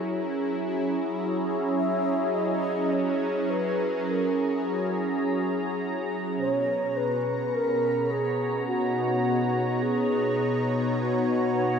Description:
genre	ambient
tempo	52 BPM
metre	4/4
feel	straight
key	F# mixolydian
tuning	A4 = 440 Hz
part	warm analog pad	sustained chords	0.0-11.8 s	B2 to A#5	-26 LUFS	equal	chorus, shimmer reverb
part	mellow wooden-headed alto flute	melody	1.8-11.8 s	F#4 to E5	-28 LUFS	equal	shimmer reverb, diffuse ambient delay
room	wet concert hall reverb, RT60 1.9 s, small room ambience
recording	dark, warm production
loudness	-24 LUFS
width	side -6 dB against mid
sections	0.0-11.8 A section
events	none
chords	0.0 F#7; 6.4 Bmaj7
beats	0.61 | 1.76 2.91 4.07 5.22 | 6.38 7.53 8.68 9.84 | 10.99

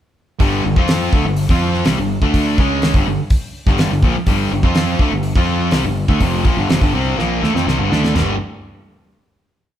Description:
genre	classic rock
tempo	124 BPM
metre	4/4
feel	straight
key	G minor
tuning	A4 = 440 Hz
part	distorted electric guitar	riff	0.4-8.3 s	F2 to F4	-20 LUFS	left 8 dB	overdrive
part	sludgy distorted guitar	riff	0.4-8.3 s	F2 to G4	-21 LUFS	right 7 dB	overdrive
part	growling fingered electric bass	bass	0.4-8.4 s	F1 to F2	-21 LUFS	equal	overdrive
part	damped 70s drum kit	drums	0.4-8.3 s	hi-hat, kick drum, snare drum, splash cymbal, toms	-17 LUFS	equal	none
room	moderate large studio reverb, RT60 1.3 s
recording	band playing live in one room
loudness	-14 LUFS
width	side -11 dB against mid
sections	0.4-8.1 riff; 8.1-9.8 final chord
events	drum fill 7.2-8.1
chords	0.4 Gm; 8.1 G5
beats	| 0.40 0.89 1.37 1.86 | 2.34 2.83 3.31 3.79 | 4.28 4.76 5.24 5.73 | 6.21 6.70 7.18 7.66 | 8.15

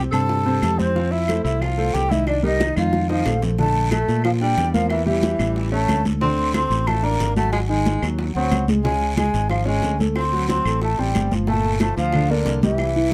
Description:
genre	Afro-Cuban jazz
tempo	183 BPM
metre	4/4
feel	straight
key	F major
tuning	A4 = 440 Hz
part	breathy tenor saxophone	second line	0.0-13.1 s	D3 to A4	-31 LUFS	equal	none
part	warm grand piano	accompaniment	0.0-13.1 s	Bb2 to F5	-27 LUFS	equal	none
part	fingered electric bass	bass	0.0-13.1 s	G1 to Bb2	-25 LUFS	equal	none
part	mellow hollow concert flute	melody	0.1-13.1 s	C5 to C6	-26 LUFS	equal	none
part	bongos	percussion	0.1-13.1 s	none	-33 LUFS	equal	none
part	claves	percussion	0.1-13.0 s	none	-36 LUFS	equal	none
part	congas	percussion	0.1-13.1 s	none	-28 LUFS	equal	none
part	guiro	percussion	0.1-13.1 s	none	-39 LUFS	equal	none
room	light reverb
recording	dark, warm production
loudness	-20 LUFS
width	mono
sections	0.0-3.6 A section; 3.6-13.1 B section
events	drum fill 2.8-3.6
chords	0.0 C; 1.0 Fmaj7; 2.3 Cm7; 2.9 F7; 3.6 Bbmaj7; 4.9 Edim; 5.6 A7; 6.2 Dm7; 7.5 Ab7; 8.8 Db; 10.2 D7; 11.5 Gm11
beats	0.29 0.62 | 0.95 1.28 1.61 1.94 | 2.27 2.60 2.93 3.26 | 3.59 3.92 4.25 4.58 | 4.91 5.24 5.56 5.89 | 6.22 6.55 6.88 7.21 | 7.53 7.86 8.19 8.52 | 8.85 9.18 9.51 9.84 | 10.16 10.49 10.82 11.15 | 11.48 11.80 12.13 12.46 | 12.79 13.12

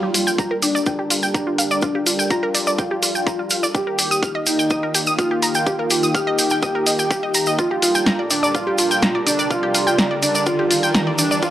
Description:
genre	melodic techno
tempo	125 BPM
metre	4/4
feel	straight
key	G minor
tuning	A4 = 440 Hz
part	mellow synth brass	melody	0.0-11.5 s	D4 to G4	-22 LUFS	equal	chorus, sidechain pumping, tape echo
part	lush unison pad	sustained chords	0.0-11.5 s	Eb3 to Bb4	-29 LUFS	equal	chorus, sidechain pumping
part	wide unison pluck	arpeggios	0.0-11.5 s	F4 to F6	-22 LUFS	equal	sidechain pumping, tape echo
part	warbly tape-like pad	texture	0.0-11.5 s	Bb3 to G5	-28 LUFS	equal	chorus, built-in reverb, phaser, sidechain pumping
part	punchy analog drum machine	drums	0.1-11.3 s	hi-hat, snare drum	-21 LUFS	equal	none
part	cabasa	percussion	0.1-11.5 s	none	-24 LUFS	right 1 dB	none
part	electronic kick drum	drums	0.4-11.5 s	none	-23 LUFS	equal	high-pass filter on kick, high-pass filter on room
part	riser	sound effects	9.0-11.5 s	none	-28 LUFS	left 1 dB	none
room	moderate digital room reverb, RT60 1.1 s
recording	dry, gritty hardware recording, cassette tape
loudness	-16 LUFS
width	side -12 dB against mid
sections	0.0-11.5 A section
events	build-up 0.0-11.5; filter sweep on analog synth pad 0.0-11.5; riser 9.0-11.5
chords	0.0 Gm7; 3.7 Eb; 7.6 Gm7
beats	0.39 0.87 1.35 | 1.83 2.31 2.79 3.27 | 3.75 4.23 4.71 5.19 | 5.67 6.15 6.63 7.11 | 7.59 8.07 8.55 9.03 | 9.51 9.99 10.47 10.95 | 11.43

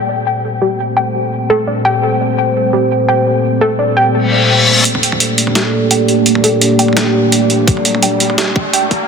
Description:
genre	half-time drum and bass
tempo	170 BPM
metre	4/4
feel	swing 53% on 16ths, half-time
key	G minor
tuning	A4 = 435 Hz
part	dark analog pad	sustained chords	0.0-9.1 s	Bb3 to D5	-14 LUFS	equal	chorus, phaser, sidechain pumping
part	warbly dusty pluck	arpeggios	0.6-8.8 s	G4 to G5	-16 LUFS	equal	chorus, ping-pong delay
part	reverse cymbal and riser	sound effects	4.2-9.1 s	none	-17 LUFS	left 3 dB	none
part	boom bap sampler-style drum kit	drums	4.9-9.0 s	hi-hat, snare drum, toms	-15 LUFS	right 2 dB	high-pass filter on hats, high-pass filter on toms, high-pass filter on snare
part	electronic kick drum	drums	7.7-9.0 s	none	-15 LUFS	left 1 dB	none
room	moderate huge ambient reverb, RT60 4.5 s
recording	dense, heavily limited modern master, high-pass filter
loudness	-10 LUFS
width	side -6 dB against mid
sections	0.0-4.9 A section; 4.9-9.1 B section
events	filter sweep on analog synth pad 0.0-4.9; filter sweep on synth pluck 0.0-4.9; reverse cymbal 4.2-4.9; build-up 4.9-9.1; riser 4.9-9.1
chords	0.0 Gmadd9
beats	0.26 | 0.62 0.97 1.32 1.68 | 2.03 2.38 2.73 3.09 | 3.44 3.79 4.15 4.50 | 4.85 5.21 5.56 5.91 | 6.26 6.62 6.97 7.32 | 7.68 8.03 8.38 8.73

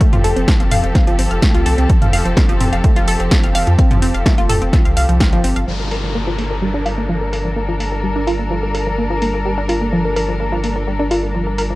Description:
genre	melodic techno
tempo	127 BPM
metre	4/4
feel	straight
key	G minor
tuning	A4 = 439 Hz
part	muted studio string section	sustained chords	0.0-11.8 s	F3 to Bb4	-23 LUFS	left 1 dB	sidechain pumping, low-pass filter
part	analog pluck	arpeggios	0.0-11.8 s	F3 to F5	-20 LUFS	equal	chorus, phaser, cassette tape, sidechain pumping, tape echo
part	deep house drum kit	drums	0.0-11.7 s	hi-hat, snare drum, toms	-21 LUFS	equal	overdrive, low-pass filter on hats, low-pass filter on toms, low-pass filter on snare, low-pass filter on room
part	electronic kick drum	drums	0.0-5.3 s	none	-14 LUFS	equal	overdrive
part	round analog bass	bass	0.1-11.8 s	F1 to F2	-20 LUFS	equal	sidechain pumping
part	downlifter	sound effects	5.7-9.5 s	none	-29 LUFS	left 1 dB	none
room	little or no reverb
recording	dry, gritty hardware recording, cassette tape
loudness	-14 LUFS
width	side -19 dB against mid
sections	0.0-5.7 A section; 5.7-11.8 B section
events	none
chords	0.0 F; 5.7 Gm7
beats	| 0.01 0.48 0.95 1.43 | 1.90 2.37 2.84 3.31 | 3.79 4.26 4.73 5.20 | 5.68 6.15 6.62 7.09 | 7.57 8.04 8.51 8.98 | 9.46 9.93 10.40 10.87 | 11.35

